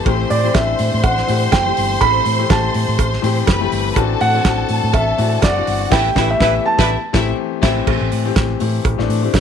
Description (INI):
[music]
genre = disco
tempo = 123 BPM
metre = 4/4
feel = swing 56% on 16ths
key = A dorian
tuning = A4 = 440 Hz
[part]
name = clear studio string section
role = second line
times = 0.0-7.8 s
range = E4 to C6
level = -22 LUFS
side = left 2 dB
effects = none
[part]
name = clear grand piano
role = accompaniment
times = 0.0-9.4 s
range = E3 to A4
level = -21 LUFS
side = left 13 dB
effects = none
[part]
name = hollow-body short-scale fingered electric bass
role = bass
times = 0.1-9.4 s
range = F#1 to A2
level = -20 LUFS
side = right 1 dB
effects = none
[part]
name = damped 70s drum kit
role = drums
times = 0.1-9.4 s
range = crash cymbal, hi-hat, kick drum, snare drum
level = -20 LUFS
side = right 1 dB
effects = none
[part]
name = cowbell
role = percussion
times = 0.1-9.4 s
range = none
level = -25 LUFS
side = right 14 dB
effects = none
[part]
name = dark concert grand piano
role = melody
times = 0.3-7.3 s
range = D5 to B5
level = -19 LUFS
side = right 3 dB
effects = none
[part]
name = warm horn section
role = stabs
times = 5.9-6.9 s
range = E3 to B4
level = -23 LUFS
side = right 13 dB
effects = none
[sound]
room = light reverb, small room ambience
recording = 1960s-style stereo with parts hard left and right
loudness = -14 LUFS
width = side -8 dB against mid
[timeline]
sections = 0.0-7.9 A section; 7.9-9.4 B section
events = band accent 5.9-7.9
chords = 0.1 Am7; 5.9 G69/A; 6.9 Am7